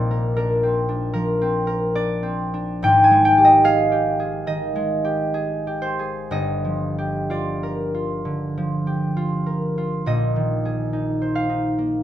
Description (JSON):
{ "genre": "classical, solo harp piece", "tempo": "59-78 BPM", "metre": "4/4", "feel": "rubato", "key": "unclear", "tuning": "A4 = 442 Hz", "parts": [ { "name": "concert harp", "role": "solo", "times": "0.0-12.0 s", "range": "G1 to Ab5", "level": "-18 LUFS", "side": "equal", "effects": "none" } ], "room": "light reverb", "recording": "none", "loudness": "-18 LUFS", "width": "side -12 dB against mid", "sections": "0.0-12.0 A section", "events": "none", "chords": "0.0 Bbadd9; 2.8 Abmaj7; 6.3 Gm7; 10.1 Bb9sus4" }